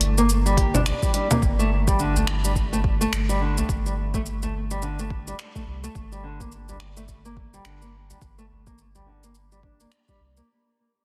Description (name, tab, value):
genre	organic downtempo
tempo	106 BPM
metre	4/4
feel	swing 60% on 16ths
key	G dorian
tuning	A4 = 440 Hz
part	warm sub bass	bass	0.0-10.4 s	G1 to C2	-28 LUFS	equal	sidechain pumping
part	deep house drum kit	drums	0.0-10.5 s	congas, finger snaps, hi-hat, shaker	-30 LUFS	equal	overdrive, soft clipping on snare
part	quartz singing bowl	texture	0.0-10.5 s	E4	-51 LUFS	equal	none
part	nylon-string guitar	arpeggios	0.2-10.5 s	D3 to G4	-28 LUFS	equal	low-pass filter, tape echo
part	electronic kick drum	drums	0.6-10.2 s	none	-28 LUFS	equal	overdrive
part	udu	percussion	2.2-9.0 s	none	-35 LUFS	equal	none
room	moderate lush hall reverb, RT60 2.5 s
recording	dense, heavily limited modern master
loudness	-23 LUFS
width	mono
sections	0.0-10.5 A section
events	fade-out 0.0-10.5; filter sweep on nylon-string guitar 0.0-10.5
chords	0.0 Gm; 1.4 C6/G (rootless); 6.0 Gm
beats	0.29 0.86 | 1.42 1.99 2.56 3.12 | 3.69 4.25 4.82 5.38 | 5.95 6.52 7.08 7.65 | 8.22 8.78 9.35 9.91